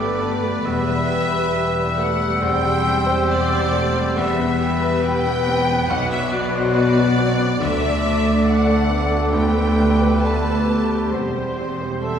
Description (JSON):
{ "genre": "cinematic, emotional film score for orchestra", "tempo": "68 BPM", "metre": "4/4", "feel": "rubato", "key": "G major", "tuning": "A4 = 440 Hz", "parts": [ { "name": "rich studio violin section", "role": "melody", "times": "0.0-12.2 s", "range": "B4 to E5", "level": "-29 LUFS", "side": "left 4 dB", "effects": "none" }, { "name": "clear oboe", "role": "second line", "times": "0.0-12.2 s", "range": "B4 to D5", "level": "-29 LUFS", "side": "right 1 dB", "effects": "none" }, { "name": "clear studio violin section", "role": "second line", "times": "0.0-12.2 s", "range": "C5 to A5", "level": "-26 LUFS", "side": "left 1 dB", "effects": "none" }, { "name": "mellow concert flute", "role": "second line", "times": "0.0-12.2 s", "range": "C6 to F#6", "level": "-28 LUFS", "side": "left 1 dB", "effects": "none" }, { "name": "warm clarinet", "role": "second line", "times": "0.0-12.2 s", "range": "F#4 to A4", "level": "-30 LUFS", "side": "left 1 dB", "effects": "none" }, { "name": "bright baby grand piano", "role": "accompaniment", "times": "0.0-12.2 s", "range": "B1 to D5", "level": "-26 LUFS", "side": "equal", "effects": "none" }, { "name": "rich studio viola section", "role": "accompaniment", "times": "0.0-12.2 s", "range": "G3 to G4", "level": "-28 LUFS", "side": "right 2 dB", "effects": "none" }, { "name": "mellow French horn section", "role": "sustained chords", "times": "0.0-12.2 s", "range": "F#3 to D4", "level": "-25 LUFS", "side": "left 1 dB", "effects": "none" }, { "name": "concert harp", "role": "arpeggios", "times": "0.0-12.2 s", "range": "E2 to D6", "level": "-31 LUFS", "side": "left 4 dB", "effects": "none" }, { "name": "rich studio cello section", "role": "bass", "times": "0.0-12.2 s", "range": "D2 to B2", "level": "-26 LUFS", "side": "equal", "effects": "none" }, { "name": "rich studio double bass section", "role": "bass", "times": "0.0-12.2 s", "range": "E1 to D2", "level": "-26 LUFS", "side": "right 2 dB", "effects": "none" }, { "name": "mellow cor anglais", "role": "melody", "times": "12.0-12.2 s", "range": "A4", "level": "-26 LUFS", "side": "right 4 dB", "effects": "none" } ], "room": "wet scoring stage reverb, RT60 1.7 s", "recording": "heard from further back in the room", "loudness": "-17 LUFS", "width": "side -8 dB against mid", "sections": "0.0-12.2 A section", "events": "none", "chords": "0.0 Gadd9; 0.7 Em; 2.4 C/E; 4.2 Em; 5.9 Bm; 7.6 D; 9.3 Gadd9/D; 11.1 C/E" }